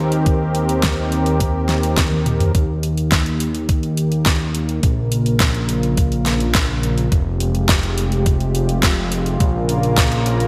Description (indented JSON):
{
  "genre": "synthwave",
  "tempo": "105 BPM",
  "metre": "4/4",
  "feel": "straight",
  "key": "unclear",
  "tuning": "A4 = 442 Hz",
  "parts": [
    { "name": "warm analog pad", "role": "sustained chords", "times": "0.0-10.5 s", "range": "C3 to Bb4", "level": "-24 LUFS", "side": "equal", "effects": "chorus, sidechain pumping" },
    { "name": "fat analog bass", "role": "bass", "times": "0.0-10.5 s", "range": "F1 to Eb2", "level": "-22 LUFS", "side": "equal", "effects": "sidechain pumping" },
    { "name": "pop drum kit", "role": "drums", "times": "0.1-10.5 s", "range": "hi-hat, snare drum, toms", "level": "-24 LUFS", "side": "equal", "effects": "high-pass filter on hats, high-pass filter on snare, high-pass filter on toms" },
    { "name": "electronic kick drum", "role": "drums", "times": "0.3-10.1 s", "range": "none", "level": "-20 LUFS", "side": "equal", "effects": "none" }
  ],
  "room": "moderate lush hall reverb, RT60 1.9 s",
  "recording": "bright 1980s-style digital production",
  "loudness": "-18 LUFS",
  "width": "mono",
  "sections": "0.0-2.5 A section; 2.5-10.5 B section",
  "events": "drum fill 2.0-2.5; filter sweep on analog synth pad 2.5-10.5",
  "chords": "0.0 Cm7/Eb; 2.5 Eb; 4.8 Bbm; 7.1 Fmadd9; 9.4 Bbm",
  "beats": "| 0.26 0.83 1.41 1.98 | 2.55 3.12 3.69 4.26 | 4.83 5.41 5.98 6.55 | 7.12 7.69 8.26 8.83 | 9.40 9.98"
}